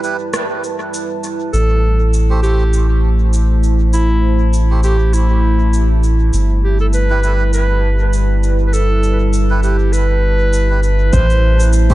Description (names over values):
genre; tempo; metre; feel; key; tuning
ambient dub; 100 BPM; 4/4; swing 56% on 16ths; A minor; A4 = 440 Hz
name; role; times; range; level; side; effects
deep dark ambient pad; sustained chords; 0.0-11.9 s; G3 to A5; -22 LUFS; right 1 dB; chorus, built-in reverb
melodica; stabs; 0.0-11.9 s; G3 to C5; -26 LUFS; right 3 dB; dub echo
electronic shaker and rim click; drums; 0.0-11.9 s; none; -26 LUFS; equal; dub echo
bright clarinet; melody; 1.5-11.7 s; E4 to C5; -20 LUFS; right 1 dB; dub echo
soft dub sub bass; bass; 1.5-11.9 s; G1 to A1; -13 LUFS; equal; none
electronic kick drum; drums; 11.1-11.9 s; none; -16 LUFS; equal; overdrive
room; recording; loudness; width
little or no reverb; echo-heavy mix, nothing above 10.7 kHz; -12 LUFS; side -16 dB against mid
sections
0.0-1.5 A section; 1.5-11.1 B section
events
break 0.0-1.5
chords
0.0 G6; 1.5 Am; 6.3 G6; 11.1 Am